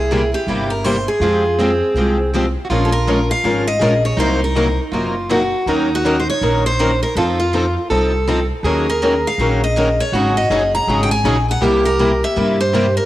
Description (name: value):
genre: acoustic string swing (jazz manouche)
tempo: 161 BPM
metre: 4/4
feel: swing 61% on 8ths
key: Bb minor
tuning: A4 = 441 Hz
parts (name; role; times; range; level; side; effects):
- picked steel-string acoustic guitar; melody; 0.0-13.1 s; F4 to Bb5; -19 LUFS; equal; cassette tape, tape echo
- picked plugged-in steel-string acoustic guitar; second line; 0.0-13.1 s; C4 to A4; -22 LUFS; right 2 dB; cassette tape
- upright bass; bass; 0.0-13.0 s; Gb1 to G2; -20 LUFS; equal; none
- picked acoustic archtop guitar; accompaniment; 0.1-12.9 s; C3 to Bb4; -20 LUFS; left 2 dB; cassette tape
- picked steel-string acoustic guitar; accompaniment; 0.1-12.9 s; C3 to Bb4; -26 LUFS; right 4 dB; cassette tape
room: light reverb, small room reverb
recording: home recording on cassette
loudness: -14 LUFS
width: side -15 dB against mid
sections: 0.0-2.7 A section; 2.7-13.1 B section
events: none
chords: 0.0 C7; 1.2 Fmadd9; 2.7 Bbm7; 4.2 Cm7b5; 5.7 Ebm7; 7.2 F7; 8.6 Ebm7; 10.1 Ab7sus4; 11.6 C7